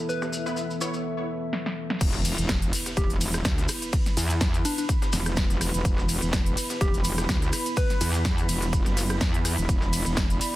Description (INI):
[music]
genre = bass house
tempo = 125 BPM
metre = 4/4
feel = swing 55% on 16ths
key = unclear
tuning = A4 = 441 Hz
[part]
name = dark analog pad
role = sustained chords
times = 0.0-10.6 s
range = E3 to E5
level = -34 LUFS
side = equal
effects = chorus, sidechain pumping
[part]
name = granular cloud pad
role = texture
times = 0.0-10.6 s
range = E4 to B5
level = -38 LUFS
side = right 2 dB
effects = built-in reverb, sidechain pumping
[part]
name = soft struck synth lead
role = melody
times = 0.1-8.2 s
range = D4 to B4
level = -33 LUFS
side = left 1 dB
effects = chorus, digital delay
[part]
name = big-room dance drum kit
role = drums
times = 0.1-10.5 s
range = crash cymbal, hi-hat, ride cymbal, rim click, snare drum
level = -31 LUFS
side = equal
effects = overdrive, low-pass filter on hats, low-pass filter on cymbals, low-pass filter on snare
[part]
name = breakbeat sampler-style drum kit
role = drums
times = 0.1-10.5 s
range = hi-hat, snare drum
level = -39 LUFS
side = equal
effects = none
[part]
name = cabasa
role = percussion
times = 0.1-10.5 s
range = none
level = -36 LUFS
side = left 2 dB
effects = none
[part]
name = orchestra-hit-like synth stab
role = stabs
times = 0.5-0.9 s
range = B3 to C#5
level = -35 LUFS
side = right 1 dB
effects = built-in reverb, sidechain pumping, digital delay
[part]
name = metallic wobble bass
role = bass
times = 2.0-10.4 s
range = E1 to E2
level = -27 LUFS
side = equal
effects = distortion, chorus, tube saturation, sidechain pumping
[part]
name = electronic kick drum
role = drums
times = 2.0-10.3 s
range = none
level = -25 LUFS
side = equal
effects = overdrive
[part]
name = impact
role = sound effects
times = 2.0-3.9 s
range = none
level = -37 LUFS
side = equal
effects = none
[sound]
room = light reverb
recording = dense, heavily limited modern master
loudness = -23 LUFS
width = side -16 dB against mid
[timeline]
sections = 0.0-2.0 A section; 2.0-10.6 B section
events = drum fill 1.5-2.0; drop 2.0-10.6; impact 2.0-3.9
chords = 0.0 E5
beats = | 0.09 0.57 1.05 1.53 | 2.01 2.49 2.97 3.45 | 3.93 4.41 4.89 5.37 | 5.85 6.33 6.81 7.29 | 7.77 8.25 8.73 9.21 | 9.69 10.17